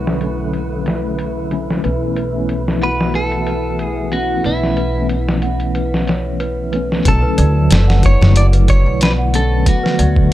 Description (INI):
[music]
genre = trip hop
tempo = 92 BPM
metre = 4/4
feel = swing 54% on 16ths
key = B minor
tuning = A4 = 438 Hz
[part]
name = mellow tine electric piano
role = accompaniment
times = 0.0-10.3 s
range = D3 to F#4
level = -21 LUFS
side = left 1 dB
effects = medium stereo tremolo, tape echo
[part]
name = deep dark ambient pad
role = sustained chords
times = 0.0-10.3 s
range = B3 to E5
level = -28 LUFS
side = left 3 dB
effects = chorus, built-in reverb
[part]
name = upright bass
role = bass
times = 0.0-10.3 s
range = F#1 to D2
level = -17 LUFS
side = equal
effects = none
[part]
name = wind-like tuned noise texture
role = texture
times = 0.0-7.1 s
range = A3 to B4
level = -30 LUFS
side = equal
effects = built-in reverb
[part]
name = dusty soul sampler-style drum kit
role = drums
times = 0.1-10.3 s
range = hi-hat, kick drum, snare drum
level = -18 LUFS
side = equal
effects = low-pass filter on hats, low-pass filter on snare, low-pass filter on kick
[part]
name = celesta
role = arpeggios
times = 1.8-10.3 s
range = B4 to F#5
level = -25 LUFS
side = right 2 dB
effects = tape echo
[part]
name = clean electric guitar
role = melody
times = 2.8-10.3 s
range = E4 to D5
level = -22 LUFS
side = equal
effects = dub echo
[sound]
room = digital ambience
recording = none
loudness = -13 LUFS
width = side -14 dB against mid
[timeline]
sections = 0.0-7.1 A section; 7.1-10.3 B section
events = none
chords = 0.0 Bm7; 1.8 Aadd9/B; 7.1 Bm7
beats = 0.53 1.18 | 1.84 2.49 3.14 3.79 | 4.45 5.10 5.75 6.40 | 7.05 7.71 8.36 9.01 | 9.66 10.31